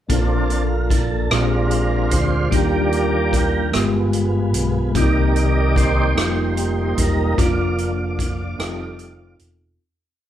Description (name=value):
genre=slow gospel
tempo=50 BPM (dotted quarters)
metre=6/8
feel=straight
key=Bb major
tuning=A4 = 442 Hz
part: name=mellow tine electric piano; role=accompaniment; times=0.1-9.8 s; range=G2 to Bb4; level=-23 LUFS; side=left 2 dB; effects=medium stereo tremolo
part: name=dark French horn section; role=sustained chords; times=0.1-9.8 s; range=D3 to D5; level=-32 LUFS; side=right 3 dB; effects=none
part: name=tonewheel organ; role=sustained chords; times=0.1-9.4 s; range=Eb3 to D5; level=-23 LUFS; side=right 2 dB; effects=fast rotary speaker, chorus vibrato
part: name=fingered electric bass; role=bass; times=0.1-9.8 s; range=E1 to Eb2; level=-22 LUFS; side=equal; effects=none
part: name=swinging big-band drum kit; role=drums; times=0.1-9.6 s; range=hi-hat, kick drum, rim click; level=-23 LUFS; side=equal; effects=none
room=moderate large studio reverb, RT60 1.2 s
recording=band playing live in one room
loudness=-16 LUFS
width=side -11 dB against mid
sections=0.1-9.8 verse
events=tonewheel organ solo 0.1-9.8; fade-out 7.4-9.8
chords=0.1 Bbmaj7; 1.3 Bb13; 2.5 Ebmaj7; 3.7 G7b9; 5.0 Cm7; 6.2 F9sus4; 7.4 Bb/F; 8.6 F7